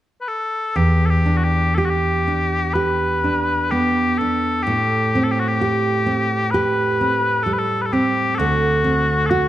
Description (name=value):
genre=celtic folk, Celtic slow air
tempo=59-66 BPM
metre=4/4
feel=rubato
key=E minor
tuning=A4 = 440 Hz
part: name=mellow small bagpipes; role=melody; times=0.2-9.5 s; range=F#4 to B4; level=-20 LUFS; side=left 2 dB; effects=none
part: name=nylon-string guitar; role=accompaniment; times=0.8-9.5 s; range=D2 to G4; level=-19 LUFS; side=right 1 dB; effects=none
room=moderate scoring stage reverb, RT60 1.5 s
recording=dark, warm production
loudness=-16 LUFS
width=side -13 dB against mid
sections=0.8-9.5 A section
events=none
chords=0.0 N.C.; 0.8 Em7; 4.7 Am7; 8.4 D7